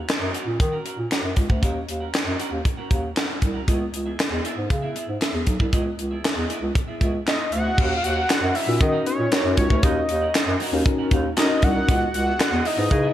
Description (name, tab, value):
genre	early-eighties boogie funk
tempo	117 BPM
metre	4/4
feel	straight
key	unclear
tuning	A4 = 441 Hz
part	semi-hollow electric guitar	riff	0.0-13.1 s	B3 to F#5	-33 LUFS	right 2 dB	wide subtle chorus, slapback echo
part	tight funk drum kit	drums	0.1-13.0 s	crash cymbal, handclaps, hi-hat, kick drum, snare drum	-22 LUFS	equal	none
part	mellow bass clarinet	bass	0.2-13.1 s	B1 to D#3	-25 LUFS	equal	none
part	fat analog lead	melody	7.3-13.1 s	C#5 to F#5	-24 LUFS	equal	slapback echo
part	mellow tine electric piano	accompaniment	8.7-13.1 s	C#4 to B4	-26 LUFS	left 3 dB	medium stereo tremolo, slapback echo
room	moderate concert hall reverb, RT60 2.2 s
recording	big arena sound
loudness	-20 LUFS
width	side -12 dB against mid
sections	0.0-7.8 A section; 7.8-13.1 B section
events	none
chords	0.0 D#m7; 3.7 C#m9; 7.8 D#m7; 11.9 C#m9